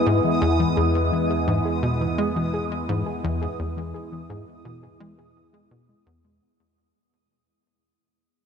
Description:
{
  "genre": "ambient, sequencer-driven space music",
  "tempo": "85 BPM",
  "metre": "4/4",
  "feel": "straight",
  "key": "unclear",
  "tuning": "A4 = 440 Hz",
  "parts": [
    { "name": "phased analog pad", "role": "sustained chords", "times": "0.0-6.4 s", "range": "G#3 to E4", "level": "-25 LUFS", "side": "equal", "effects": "phaser, chorus" },
    { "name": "soft round pluck", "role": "arpeggios", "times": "0.0-6.4 s", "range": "E3 to G#4", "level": "-28 LUFS", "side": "moving between left 6 dB and right 1 dB", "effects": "chorus, auto-pan, ping-pong delay" },
    { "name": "analog drone", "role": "bass", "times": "0.0-6.4 s", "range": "E2", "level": "-34 LUFS", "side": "equal", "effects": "chorus, tube saturation" },
    { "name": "bubbling stepped-filter texture", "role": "texture", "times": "0.0-6.4 s", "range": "D#6", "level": "-32 LUFS", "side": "right 3 dB", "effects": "chorus, built-in reverb" },
    { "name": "tight sequencer bass", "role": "riff", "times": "0.1-6.4 s", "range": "E2 to G#3", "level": "-26 LUFS", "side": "equal", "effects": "analog chorus, ping-pong delay" }
  ],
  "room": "wet huge ambient reverb, RT60 8.8 s",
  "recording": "nothing above 10.7 kHz",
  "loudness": "-21 LUFS",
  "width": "side -7 dB against mid",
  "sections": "0.0-6.4 A section",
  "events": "fade-out 0.0-6.4",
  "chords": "0.0 E",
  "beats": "0.06 | 0.77 1.48 2.18 2.89 | 3.59 4.30 5.00 5.71"
}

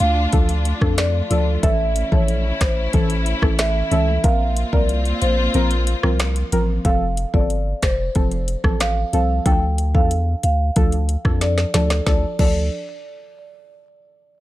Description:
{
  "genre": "dancehall",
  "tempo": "92 BPM",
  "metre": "4/4",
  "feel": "straight",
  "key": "D minor",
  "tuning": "A4 = 440 Hz",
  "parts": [
    { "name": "marimba with medium mallets", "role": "melody", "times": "0.0-12.7 s", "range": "C5 to G5", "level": "-24 LUFS", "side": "right 1 dB", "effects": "digital delay" },
    { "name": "warm studio string section", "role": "sustained chords", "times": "0.0-6.8 s", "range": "A3 to F4", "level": "-26 LUFS", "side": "left 2 dB", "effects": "sidechain pumping" },
    { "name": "punchy sub bass", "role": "bass", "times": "0.0-12.7 s", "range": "F1 to F2", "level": "-20 LUFS", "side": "equal", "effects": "none" },
    { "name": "afro-pop drum kit", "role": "drums", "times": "0.0-12.5 s", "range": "crash cymbal, finger snaps, hi-hat, kick drum, rim click, snare drum", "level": "-20 LUFS", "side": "equal", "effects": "none" },
    { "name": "deep mellow chord stab", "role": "accompaniment", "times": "0.3-12.6 s", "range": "E3 to Bb4", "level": "-24 LUFS", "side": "left 2 dB", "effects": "chorus" }
  ],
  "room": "digital ambience",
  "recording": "none",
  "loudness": "-16 LUFS",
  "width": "side -15 dB against mid",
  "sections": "0.0-6.8 A section; 6.8-12.1 B section; 12.1-14.4 C section",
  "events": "kick muted 5.5-6.8; drum fill 11.4-12.1",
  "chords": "0.0 Dm; 1.6 A; 4.2 Bbsus2; 6.8 F; 9.5 Dm",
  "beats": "0.33 0.98 | 1.63 2.28 2.94 3.59 | 4.24 4.89 5.54 6.20 | 6.85 7.50 8.15 8.80 | 9.46 10.11 10.76 11.41 | 12.07"
}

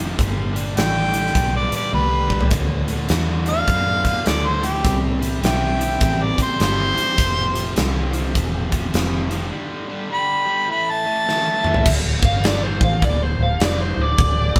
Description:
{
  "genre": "blues rock power trio and southern rock",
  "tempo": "103 BPM",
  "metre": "4/4",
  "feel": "swing 63% on 8ths",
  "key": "unclear",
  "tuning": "A4 = 440 Hz",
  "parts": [
    { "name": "distorted electric guitar", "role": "riff", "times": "0.0-11.9 s", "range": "D2 to C4", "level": "-29 LUFS", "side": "equal", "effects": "distortion" },
    { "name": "vintage muted fingered electric bass", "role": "bass", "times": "0.0-14.6 s", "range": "D1 to F#2", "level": "-25 LUFS", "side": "equal", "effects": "none" },
    { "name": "huge arena drum kit", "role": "drums", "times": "0.2-14.6 s", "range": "crash cymbal, hi-hat, kick drum, snare drum, toms", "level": "-24 LUFS", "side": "equal", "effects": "none" },
    { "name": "warm harmonica", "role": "melody", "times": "0.8-11.8 s", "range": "G4 to B5", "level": "-23 LUFS", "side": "equal", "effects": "overdrive" },
    { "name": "bluesy overdriven lead guitar", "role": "second line", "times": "0.8-14.6 s", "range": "E4 to G5", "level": "-29 LUFS", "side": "equal", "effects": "distortion" }
  ],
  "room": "light reverb",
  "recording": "band playing live in one room",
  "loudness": "-20 LUFS",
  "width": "mono",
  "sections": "0.0-11.9 A section; 11.9-14.6 B section",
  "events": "drum fill 1.9-2.5, 11.3-11.9; lead electric guitar solo 11.9-14.6",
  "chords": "0.2 G; 2.5 D; 4.8 C; 7.2 F5; 9.5 G; 10.7 A5; 11.9 N.C.; 12.2 G7(no3); 12.7 D5",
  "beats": "| 0.19 0.77 1.35 1.93 | 2.52 3.10 3.68 4.26 | 4.85 5.43 6.01 6.60 | 7.18 7.76 8.35 8.93 | 9.52 10.10 10.69 11.27 | 11.86 12.44 13.03 13.61 | 14.20"
}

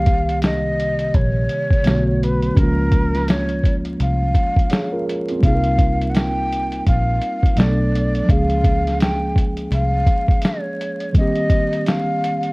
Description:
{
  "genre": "lo-fi hip hop",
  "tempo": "84 BPM",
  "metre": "4/4",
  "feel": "swing 58% on 16ths",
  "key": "Bb dorian",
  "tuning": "A4 = 443 Hz",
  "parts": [
    { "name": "breathy jazz flute", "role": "melody", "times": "0.0-12.5 s", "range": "Bb4 to G5", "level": "-23 LUFS", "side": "equal", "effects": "low-pass filter, plate reverb" },
    { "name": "mellow tine electric piano", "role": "accompaniment", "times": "0.0-12.5 s", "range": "C3 to Db5", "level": "-22 LUFS", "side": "right 1 dB", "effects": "medium stereo tremolo, cassette tape, low-pass filter" },
    { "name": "vintage muted fingered electric bass", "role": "bass", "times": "0.0-10.0 s", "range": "Bb1 to Db2", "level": "-21 LUFS", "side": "equal", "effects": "none" },
    { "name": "lo-fi sampler-style drum kit", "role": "drums", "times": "0.1-12.5 s", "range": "hi-hat, kick drum, snare drum", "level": "-18 LUFS", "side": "equal", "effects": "none" }
  ],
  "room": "light reverb",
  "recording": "worn, warbling old tape, cassette tape, vinyl crackle, warbly pitch drift",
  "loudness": "-16 LUFS",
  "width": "side -25 dB against mid",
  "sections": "0.0-12.5 A section",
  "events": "none",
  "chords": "0.0 Cm7; 1.9 Bm7; 2.6 Bbm7/Db; 5.4 Cm7; 7.6 Bm7; 8.3 Bbm7/Db; 11.1 Cm7",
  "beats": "0.43 1.14 1.86 | 2.57 3.29 4.00 4.71 | 5.43 6.14 6.86 7.57 | 8.29 9.00 9.71 10.43 | 11.14 11.86"
}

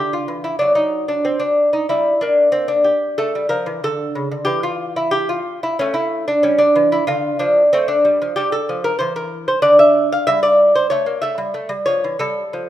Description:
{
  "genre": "classical, baroque-style dance for lute",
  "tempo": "93 BPM",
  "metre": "4/4",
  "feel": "rubato",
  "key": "unclear",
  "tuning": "A4 = 441 Hz",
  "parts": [
    { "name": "lute", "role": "solo", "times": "0.0-12.7 s", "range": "C#3 to F5", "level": "-15 LUFS", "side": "equal", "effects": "none" }
  ],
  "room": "light reverb",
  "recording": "minimal, uncompressed stereo recording",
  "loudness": "-15 LUFS",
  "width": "side -12 dB against mid",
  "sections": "0.0-12.7 A section",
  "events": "none",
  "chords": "0.0 N.C.; 1.9 Gm; 3.2 A5; 7.1 Dm; 8.3 G5; 10.9 A5; 12.2 A7(no3)",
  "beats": "| 0.61 1.26 1.90 2.54 | 3.19 3.83 4.47 5.12 | 5.77 6.42 7.06 7.70 | 8.34 8.98 9.61 10.25 | 10.89 11.53 12.19"
}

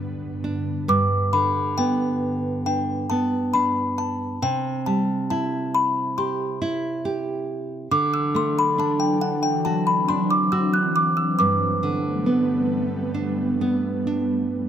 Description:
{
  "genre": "children's music, lullaby",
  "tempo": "68 BPM",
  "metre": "4/4",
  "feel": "rubato",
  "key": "G major",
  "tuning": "A4 = 443 Hz",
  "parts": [
    { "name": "nylon-string guitar", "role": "accompaniment", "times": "0.0-14.7 s", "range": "G2 to G4", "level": "-24 LUFS", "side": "right 2 dB", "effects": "none" },
    { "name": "ethereal airy pad", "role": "sustained chords", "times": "0.0-0.8, 8.3-14.7 s", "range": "G2 to D4", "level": "-26 LUFS", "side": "equal", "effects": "ensemble chorus, built-in reverb" },
    { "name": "music box", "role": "melody", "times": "0.9-14.5 s", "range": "F#5 to F#6", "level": "-23 LUFS", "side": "left 2 dB", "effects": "none" }
  ],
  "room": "moderate concert hall reverb, RT60 2.0 s",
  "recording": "close, detailed microphones",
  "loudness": "-20 LUFS",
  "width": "side -9 dB against mid",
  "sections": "0.9-14.7 A section",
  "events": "none",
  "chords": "0.0 G; 4.4 C; 7.9 Dadd9; 11.4 Gadd9",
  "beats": "| 0.88 1.77 2.65 3.53 | 4.41 5.29 6.17 7.04 | 7.91 8.78 9.65 10.52 | 11.38 12.26 13.14 14.05"
}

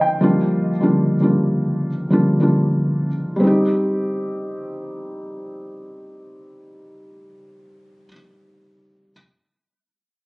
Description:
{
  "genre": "hip hop",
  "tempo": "150 BPM",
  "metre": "4/4",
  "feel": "half-time",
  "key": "unclear",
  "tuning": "A4 = 440 Hz",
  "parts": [
    { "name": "felt-muted upright piano", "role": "accompaniment", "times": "0.0-9.1 s", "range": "F3 to G4", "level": "-18 LUFS", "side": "equal", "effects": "low-pass filter" }
  ],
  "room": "small room ambience",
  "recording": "recorded on a phone in the room, studio ambience, compression",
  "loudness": "-16 LUFS",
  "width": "side -26 dB against mid",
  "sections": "0.0-3.4 A section; 3.4-6.6 B section",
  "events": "none",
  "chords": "0.2 Gm7; 3.4 Cm",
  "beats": "| 0.22 0.62 1.02 1.42 | 1.82 2.22 2.62 3.02 | 3.42 3.82 4.22 4.62 | 5.02 5.42 5.82 6.22"
}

